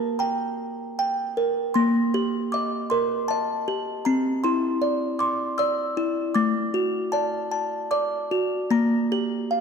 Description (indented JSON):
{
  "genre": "children's music, lullaby",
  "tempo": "78 BPM",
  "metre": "3/4",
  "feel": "rubato",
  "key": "G harmonic minor",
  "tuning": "A4 = 440 Hz",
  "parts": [
    { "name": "music box", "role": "solo", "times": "0.0-9.6 s", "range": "A3 to E6", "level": "-22 LUFS", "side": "equal", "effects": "none" }
  ],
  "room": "moderate scoring stage reverb, RT60 1.8 s",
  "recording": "dark, warm production",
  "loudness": "-22 LUFS",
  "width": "side -6 dB against mid",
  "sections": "0.0-9.6 A section",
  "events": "none",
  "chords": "0.0 Gmadd9; 1.8 Eb; 4.1 Cadd9; 6.3 D; 8.7 Gm"
}